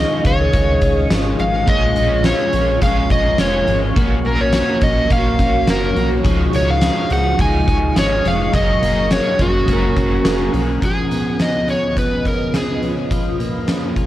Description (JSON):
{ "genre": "dream pop", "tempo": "105 BPM", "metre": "4/4", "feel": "straight", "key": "F# major", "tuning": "A4 = 440 Hz", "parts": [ { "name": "overdriven slide guitar", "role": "melody", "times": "0.0-12.9 s", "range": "F#4 to G#5", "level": "-20 LUFS", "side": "equal", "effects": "ping-pong delay" }, { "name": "shimmering ambient pad", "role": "sustained chords", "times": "0.0-14.1 s", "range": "C#2 to C#6", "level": "-26 LUFS", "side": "right 2 dB", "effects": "chorus, built-in reverb, phaser" }, { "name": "electric guitar at the edge of break-up", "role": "arpeggios", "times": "0.0-14.1 s", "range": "D#3 to G#4", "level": "-22 LUFS", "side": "left 3 dB", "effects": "analog chorus, ping-pong delay" }, { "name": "round analog bass", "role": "bass", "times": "0.0-10.8 s", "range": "E#1 to C#2", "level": "-21 LUFS", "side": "equal", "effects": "none" }, { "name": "oversized low-tuned drum kit", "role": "drums", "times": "0.2-14.1 s", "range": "hi-hat, kick drum, snare drum, tambourine", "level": "-20 LUFS", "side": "equal", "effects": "none" }, { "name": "synth chime", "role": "texture", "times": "0.4-11.1 s", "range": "E#4 to A#4", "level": "-34 LUFS", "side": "right 1 dB", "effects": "none" }, { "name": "overdriven electric guitar", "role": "accompaniment", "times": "1.7-11.4 s", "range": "A#2 to A#4", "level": "-25 LUFS", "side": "right 2 dB", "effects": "harmonic tremolo, ensemble chorus" } ], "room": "light reverb, small room ambience", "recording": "worn, warbling old tape, cassette tape, warbly pitch drift", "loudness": "-14 LUFS", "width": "side -14 dB against mid", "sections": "0.0-10.8 A section; 10.8-14.1 B section", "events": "none", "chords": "0.0 C#add9; 1.7 A#m7; 4.0 F#/A#; 6.2 C#add9; 8.5 F#add9; 10.8 C#7; 13.1 F#maj7" }